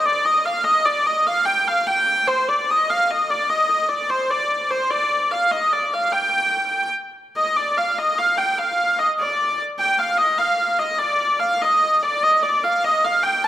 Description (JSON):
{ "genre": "medieval", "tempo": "98 BPM (dotted quarters)", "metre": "6/8", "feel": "straight", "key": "unclear", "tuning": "A4 = 440 Hz", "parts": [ { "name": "clear hurdy-gurdy", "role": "solo", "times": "0.0-13.5 s", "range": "C5 to A5", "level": "-17 LUFS", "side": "equal", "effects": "none" } ], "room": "moderate recital hall reverb, RT60 1.6 s", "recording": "none", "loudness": "-17 LUFS", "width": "side -12 dB against mid", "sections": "0.0-7.3 A section; 7.3-13.5 B section", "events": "none", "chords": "none", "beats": "| 0.02 0.63 | 1.25 1.86 | 2.47 3.08 | 3.69 4.30 | 4.91 5.52 | 6.12 6.73 | 7.34 7.95 | 8.56 9.17 | 9.78 10.38 | 10.99 11.60 | 12.21 12.81 | 13.42" }